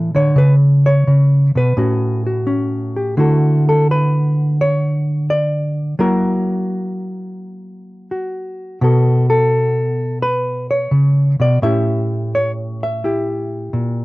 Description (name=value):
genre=solo jazz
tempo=85 BPM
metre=4/4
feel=swing 69% on 8ths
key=D major from 3.2 s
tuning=A4 = 444 Hz
part: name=hollow-body jazz guitar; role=solo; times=0.0-14.0 s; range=A2 to E5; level=-14 LUFS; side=equal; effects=none
room=light reverb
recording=dark, warm production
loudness=-14 LUFS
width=side -20 dB against mid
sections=0.0-3.2 A section; 3.2-14.0 B section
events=none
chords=0.4 Bsus2; 1.8 A13; 3.2 Dmaj9; 6.0 F#7; 8.8 Bsus2; 11.6 A7b9